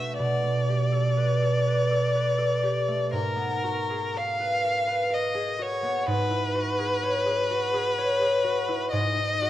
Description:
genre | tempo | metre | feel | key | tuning
classical, impressionist duo for violin and harp | 62 BPM | 3/4 | uneven beats, rubato | unclear | A4 = 439 Hz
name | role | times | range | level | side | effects
rich violin | melody | 0.0-9.5 s | A#4 to E#5 | -26 LUFS | left 2 dB | none
concert harp | accompaniment | 0.0-9.5 s | G#2 to D5 | -26 LUFS | right 1 dB | none
room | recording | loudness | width
wet recital hall reverb, RT60 1.5 s | dark, warm production | -23 LUFS | side -13 dB against mid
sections
0.0-9.5 A section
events
none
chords
0.2 A9sus4/B; 3.1 G#m9; 6.1 F#9sus4/G#; 8.9 G#m7

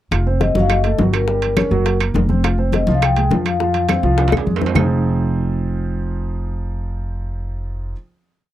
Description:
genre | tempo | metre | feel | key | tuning
Afro-Cuban jazz | 208 BPM | 4/4 | straight | F minor | A4 = 442 Hz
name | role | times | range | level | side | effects
warm concert grand piano | accompaniment | 0.1-7.9 s | F3 to F5 | -24 LUFS | right 4 dB | none
upright bass | bass | 0.1-7.9 s | F1 to F2 | -19 LUFS | equal | none
bongos | percussion | 0.1-4.8 s | none | -25 LUFS | left 8 dB | none
claves | percussion | 0.1-4.8 s | none | -26 LUFS | right 10 dB | none
congas | percussion | 0.1-4.8 s | none | -23 LUFS | left 2 dB | none
timbales | percussion | 0.1-4.8 s | none | -26 LUFS | right 9 dB | none
vibraphone with soft mallets | melody | 0.4-4.3 s | Bb4 to G5 | -20 LUFS | left 5 dB | none
room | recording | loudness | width
little or no reverb | dry, close 1970s-style studio recording | -16 LUFS | side -13 dB against mid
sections
0.1-4.8 A section; 4.8-7.1 final chord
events
drum fill 4.2-4.8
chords
0.1 F5; 0.7 Gbm6; 1.3 Gdim; 1.9 Gb; 2.4 Fm; 4.8 Fm7

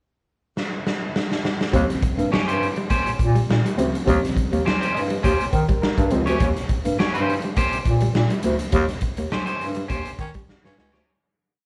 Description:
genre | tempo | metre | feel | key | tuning
funk | 103 BPM | 4/4 | straight | Eb mixolydian | A4 = 441 Hz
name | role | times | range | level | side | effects
raw garage drum kit | drums | 0.6-11.1 s | hi-hat, kick drum, snare drum | -26 LUFS | equal | none
clean electric guitar | riff | 1.7-11.0 s | Gb3 to Bb3 | -32 LUFS | equal | slapback echo
barky reed electric piano | stabs | 1.7-6.4 s | Db3 to Eb5 | -29 LUFS | equal | overdrive, tremolo, slapback echo
mellow bass clarinet | bass | 1.7-11.0 s | Db2 to Eb3 | -24 LUFS | equal | none
electric guitar at the edge of break-up | accompaniment | 2.3-11.1 s | Db4 to Db5 | -28 LUFS | equal | slapback echo
raspy baritone saxophone | second line | 10.2-11.2 s | Db4 | -47 LUFS | equal | none
room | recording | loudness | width
light reverb, studio reverb | live gig heard through the venue's PA, club reverb, lossy compression artefacts | -22 LUFS | mono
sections
0.0-1.7 pickup bar; 1.7-11.1 A section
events
drum fill 0.6-1.7, 10.5-11.1; reed electric piano fill 4.7-6.4; break 6.4-11.1; fade-out 8.7-11.1; band accent 8.7-11.1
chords
0.0 N.C.; 1.7 Eb13

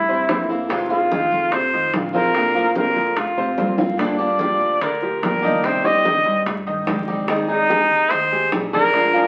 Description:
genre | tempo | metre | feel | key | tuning
latin, Cuban son and guajira | 146 BPM | 4/4 | straight | unclear | A4 = 440 Hz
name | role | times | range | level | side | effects
breathy trumpet | melody | 0.0-9.3 s | Eb4 to Eb5 | -21 LUFS | equal | none
upright bass | bass | 0.0-9.3 s | G1 to Ab2 | -34 LUFS | equal | none
clear baby grand piano | arpeggios | 0.1-9.3 s | C3 to Eb5 | -28 LUFS | equal | none
bongos | percussion | 0.1-9.1 s | none | -29 LUFS | equal | none
congas | percussion | 0.1-9.3 s | none | -34 LUFS | equal | none
fingerpicked old ladder-braced acoustic guitar | accompaniment | 0.3-9.3 s | C3 to Ab4 | -25 LUFS | equal | none
room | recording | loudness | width
wet studio reverb, RT60 0.7 s | very old 78 rpm record, vinyl crackle | -19 LUFS | mono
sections
0.0-9.3 A section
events
drum fill 3.6-4.0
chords
0.0 C7; 0.7 Fm7; 2.3 Bbadd9; 4.0 Gm7; 5.6 Cm/G; 7.3 Abmaj7

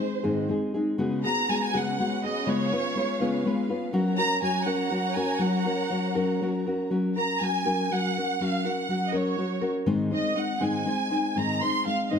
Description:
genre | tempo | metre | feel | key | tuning
mexican folk, mariachi | 81 BPM (dotted quarters) | 6/8 | rubato | F# major | A4 = 440 Hz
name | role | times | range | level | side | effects
warm studio violin section | melody | 0.0-12.2 s | B#4 to B#5 | -28 LUFS | right 2 dB | none
nylon-string guitar | accompaniment | 0.0-12.2 s | G#2 to B#4 | -26 LUFS | left 2 dB | none
warm symphonic violin section | sustained chords | 1.0-6.9 s | C#4 to A#5 | -36 LUFS | right 2 dB | none
room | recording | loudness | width
moderate scoring stage reverb, RT60 1.9 s | none | -24 LUFS | side -7 dB against mid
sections
0.0-6.9 A section; 6.9-12.2 A section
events
none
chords
0.0 G#; 1.0 C#7sus4; 2.5 C#7; 3.9 F#; 9.9 G#

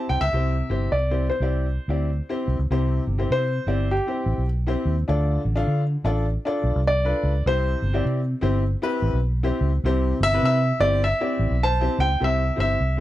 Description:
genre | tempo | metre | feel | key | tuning
uptempo 1960s-style soul | 101 BPM | 4/4 | swing 62% on 8ths | C major | A4 = 436 Hz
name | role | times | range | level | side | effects
warm grand piano | melody | 0.0-13.0 s | G4 to A5 | -24 LUFS | equal | none
clear upright piano | accompaniment | 0.0-13.0 s | C3 to F5 | -27 LUFS | left 2 dB | none
vintage muted fingered electric bass | bass | 0.1-13.0 s | G1 to D3 | -22 LUFS | equal | none
room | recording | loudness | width
studio ambience | none | -20 LUFS | side -14 dB against mid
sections
0.0-2.7 A section; 2.7-12.2 B section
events
grand piano solo 2.7-12.2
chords
0.0 C; 5.1 Dm; 7.5 C

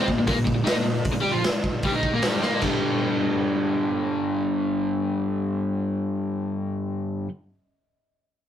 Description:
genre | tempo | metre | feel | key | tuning
garage rock duo or trio | 152 BPM | 4/4 | straight | G minor | A4 = 440 Hz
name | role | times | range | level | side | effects
overdriven electric guitar | riff | 0.0-7.3 s | G2 to G4 | -23 LUFS | left 1 dB | none
raw garage drum kit | drums | 0.1-2.7 s | crash cymbal, hi-hat, kick drum, snare drum | -25 LUFS | equal | none
room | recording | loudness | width
moderate studio reverb, RT60 0.5 s | rough rehearsal-room recording | -22 LUFS | side -10 dB against mid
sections
0.0-2.6 A section; 2.6-5.8 B section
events
drum fill 2.4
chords
0.0 Bb5; 2.6 G5

